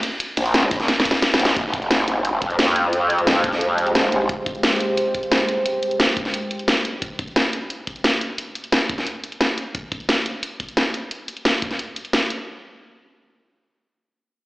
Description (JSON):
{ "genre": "dark technical drum and bass", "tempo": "176 BPM", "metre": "4/4", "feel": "straight", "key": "F minor", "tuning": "A4 = 440 Hz", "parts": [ { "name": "drum and bass drum kit", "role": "drums", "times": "0.0-12.4 s", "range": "hi-hat, ride cymbal, snare drum", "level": "-20 LUFS", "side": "equal", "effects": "none" }, { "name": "growl bass", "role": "bass", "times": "0.4-4.3 s", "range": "F1 to F2", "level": "-20 LUFS", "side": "equal", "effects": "chorus, overdrive, sidechain pumping" }, { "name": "electronic kick drum", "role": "drums", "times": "0.7-11.7 s", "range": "none", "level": "-29 LUFS", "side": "equal", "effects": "none" }, { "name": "deep dark ambient pad", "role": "sustained chords", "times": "2.8-9.7 s", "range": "Ab3 to G5", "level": "-25 LUFS", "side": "right 1 dB", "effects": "chorus, built-in reverb, sidechain pumping" } ], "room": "wet lush hall reverb, RT60 1.8 s, digital ambience", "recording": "played on a big sound system in a bare room, large studio reverb, AM radio sound", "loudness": "-18 LUFS", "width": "side -20 dB against mid", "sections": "0.0-1.6 A section; 1.6-12.5 B section; 12.5-14.5 C section", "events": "drop 0.0-1.6; drum fill 0.9-1.6; band accent 1.5; filter sweep on ambient pad 1.6-9.7", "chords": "0.0 N.C.; 1.6 Fmadd9; 7.0 Bbm; 12.5 N.C." }